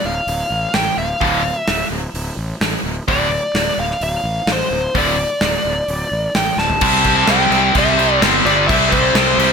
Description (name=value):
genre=hard rock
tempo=128 BPM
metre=4/4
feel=straight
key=D minor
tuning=A4 = 438 Hz
part: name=biting lead guitar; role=melody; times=0.0-9.5 s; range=C5 to A5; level=-19 LUFS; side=left 1 dB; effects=overdrive, digital delay
part: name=fuzz fingered electric bass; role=bass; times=0.0-9.5 s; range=D1 to C2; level=-23 LUFS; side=equal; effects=overdrive
part: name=gated 80s drum kit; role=drums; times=0.3-9.5 s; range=crash cymbal, hi-hat, kick drum, snare drum, toms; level=-20 LUFS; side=equal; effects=none
part: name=distorted electric guitar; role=riff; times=1.2-9.5 s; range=D2 to C4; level=-19 LUFS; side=right 14 dB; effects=overdrive
part: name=scooped high-gain guitar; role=riff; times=1.2-9.5 s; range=D2 to C4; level=-18 LUFS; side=left 15 dB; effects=distortion
part: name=tight distorted guitar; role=riff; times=6.8-9.5 s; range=C3 to C5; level=-21 LUFS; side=left 1 dB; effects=distortion
room=small room ambience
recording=none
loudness=-14 LUFS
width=side -6 dB against mid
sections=0.0-6.8 A section; 6.8-9.5 B section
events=drum fill 6.6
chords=0.0 D5; 6.8 C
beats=0.28 0.74 | 1.21 1.68 2.15 2.61 | 3.08 3.55 4.02 4.48 | 4.95 5.42 5.89 6.35 | 6.82 7.29 7.75 8.22 | 8.68 9.15